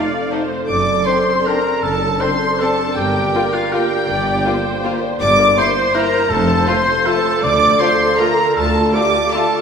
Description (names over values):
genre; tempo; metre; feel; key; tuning
classical, orchestral ballroom waltz; 160 BPM; 3/4; uneven beats, rubato; unclear; A4 = 441 Hz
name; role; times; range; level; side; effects
rich symphonic violin section; melody; 0.0-9.6 s; F5 to D6; -21 LUFS; equal; none
dark clarinet; second line; 0.0-9.6 s; F4 to D5; -22 LUFS; left 2 dB; none
mellow flute section; second line; 0.0-9.6 s; F5 to D6; -22 LUFS; equal; none
warm oboe; second line; 0.0-9.6 s; F4 to D5; -22 LUFS; right 1 dB; none
warm symphonic viola section; accompaniment; 0.0-9.6 s; F4 to D5; -23 LUFS; right 2 dB; none
mellow French horn section; sustained chords; 0.0-9.5 s; A3 to F4; -26 LUFS; equal; none
concert harp; arpeggios; 0.0-9.6 s; F2 to D6; -24 LUFS; left 3 dB; none
warm symphonic violin section; second line; 0.3-9.4 s; A3 to F4; -27 LUFS; left 3 dB; none
rich symphonic double bass section; bass; 0.7-8.9 s; F1 to D2; -25 LUFS; right 2 dB; none
warm symphonic cello section; bass; 0.7-8.9 s; D2 to G2; -27 LUFS; right 2 dB; none
timpani; percussion; 6.3-6.8 s; F2; -29 LUFS; left 2 dB; none
room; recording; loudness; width
wet scoring stage reverb, RT60 1.6 s; recorded in a church or concert hall; -13 LUFS; side -6 dB against mid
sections
0.0-9.6 A section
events
none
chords
0.0 F7; 0.7 D7/F#; 3.0 Gm7; 5.2 C7/G; 6.3 F; 7.4 Dm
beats
0.31 | 0.69 1.07 1.46 | 1.83 2.21 2.60 | 2.97 3.34 3.73 | 4.08 4.45 4.84 | 5.20 5.58 5.95 | 6.31 6.67 7.06 | 7.43 7.80 8.20 | 8.58 8.95 9.34